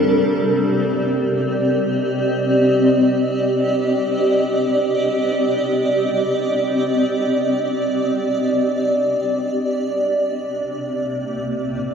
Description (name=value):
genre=ambient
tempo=free time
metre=none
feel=none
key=C dorian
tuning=A4 = 436 Hz
part: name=granular cloud pad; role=sustained chords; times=0.0-11.9 s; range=C3 to Eb5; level=-17 LUFS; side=equal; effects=built-in reverb
part: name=overtone-sweeping drone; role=drone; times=0.0-3.3 s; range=C3 to G3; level=-23 LUFS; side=equal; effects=chorus, built-in reverb, phaser
room=wet lush hall reverb, RT60 3.0 s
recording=none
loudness=-17 LUFS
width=side -6 dB against mid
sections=0.0-3.2 A section; 3.2-11.9 B section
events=none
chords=0.0 Cm7; 3.2 Cm; 10.1 Bb/C